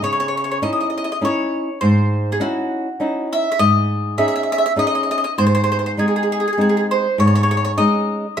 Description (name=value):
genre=italian folk, Italian serenade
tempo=101 BPM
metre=3/4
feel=straight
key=C# harmonic minor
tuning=A4 = 439 Hz
part: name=mandolin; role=melody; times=0.0-8.4 s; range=F#4 to E5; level=-19 LUFS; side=equal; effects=none
part: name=flamenco guitar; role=accompaniment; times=0.0-8.4 s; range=G#2 to G#4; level=-19 LUFS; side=equal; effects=none
room=wet stone room reverb, RT60 0.9 s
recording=band playing live in one room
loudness=-16 LUFS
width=side -8 dB against mid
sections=0.0-8.4 A section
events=none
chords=0.0 C#madd9; 3.6 G#sus4; 5.4 G#; 7.2 G#sus4